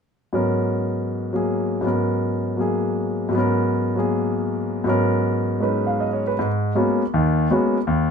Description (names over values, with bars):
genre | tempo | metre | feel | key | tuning
jazz | 159 BPM | 4/4 | swing 66% on 8ths | G# minor | A4 = 440 Hz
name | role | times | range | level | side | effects
clear grand piano | solo | 0.3-8.1 s | D#2 to E#5 | -19 LUFS | equal | none
room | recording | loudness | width
moderate studio reverb, RT60 0.7 s | minimal, uncompressed stereo recording | -19 LUFS | side -6 dB against mid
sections
0.3-6.4 A section; 6.4-8.1 B section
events
none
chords
0.3 G#m11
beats
| 0.33 0.70 1.08 1.46 | 1.83 2.21 2.59 2.96 | 3.34 3.72 4.10 4.48 | 4.85 5.23 5.61 5.99 | 6.37 6.74 7.12 7.50 | 7.88